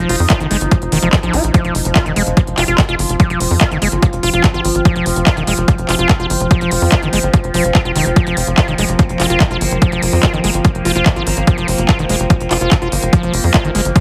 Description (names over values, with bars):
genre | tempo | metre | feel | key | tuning
psychedelic trance | 145 BPM | 4/4 | straight | unclear | A4 = 438 Hz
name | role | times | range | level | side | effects
overtone-sweeping drone | sustained chords | 0.0-14.0 s | F3 to F4 | -25 LUFS | equal | chorus, built-in reverb, phaser, sidechain pumping
overdriven acid bass | riff | 0.0-14.0 s | Eb3 to F4 | -22 LUFS | equal | distortion, sidechain pumping, digital delay
tight sequencer bass | bass | 0.0-13.9 s | F1 to F2 | -21 LUFS | equal | none
deep dark ambient pad | texture | 0.0-14.0 s | F4 to G5 | -26 LUFS | equal | chorus, built-in reverb, sidechain pumping
techno drum kit | drums | 0.1-14.0 s | handclaps, hi-hat | -22 LUFS | equal | none
electronic kick drum | drums | 0.3-14.0 s | none | -14 LUFS | equal | none
room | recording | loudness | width
light reverb | heavily compressed radio sound, multiband compression | -14 LUFS | mono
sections
0.0-14.0 A section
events
none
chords
0.0 F5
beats
0.30 0.71 1.13 | 1.54 1.96 2.37 2.78 | 3.20 3.61 4.03 4.44 | 4.85 5.27 5.68 6.09 | 6.51 6.92 7.33 7.75 | 8.16 8.58 8.99 9.40 | 9.82 10.23 10.65 11.06 | 11.47 11.89 12.30 12.71 | 13.13 13.54 13.96